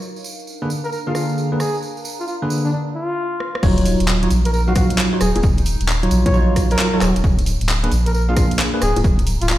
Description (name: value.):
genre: UK garage, two-step garage.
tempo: 133 BPM.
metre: 4/4.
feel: swing 66% on 16ths.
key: Eb minor.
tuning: A4 = 441 Hz.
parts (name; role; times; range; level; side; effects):
tambourine; percussion; 0.0-9.6 s; none; -33 LUFS; right 4 dB; none.
warbly tape-like pad; texture; 0.0-9.6 s; D4 to Bb5; -35 LUFS; equal; chorus, built-in reverb, phaser, sidechain pumping.
bell-like tine electric piano; stabs; 0.6-8.8 s; D3 to F5; -21 LUFS; equal; phaser, low-pass filter, digital delay.
trumpet with bucket mute; melody; 0.8-9.6 s; D4 to Db5; -25 LUFS; equal; digital delay.
garage drum kit; drums; 1.1-9.6 s; bongos, crash cymbal, handclaps, hi-hat, rim click; -23 LUFS; left 1 dB; overdrive.
soft dub sub bass; bass; 3.6-9.6 s; D1 to Bb1; -19 LUFS; equal; sidechain pumping.
electronic kick drum; drums; 3.6-9.2 s; none; -18 LUFS; equal; none.
room: light reverb.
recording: played on a big sound system in a bare room, stone room reverb.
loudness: -16 LUFS.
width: side -14 dB against mid.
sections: 0.0-3.6 A section; 3.6-9.6 B section.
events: drum fill 3.4; drop 3.6-9.6.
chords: 0.0 Bb7/D; 3.6 Ebm9; 7.2 Bb7/D.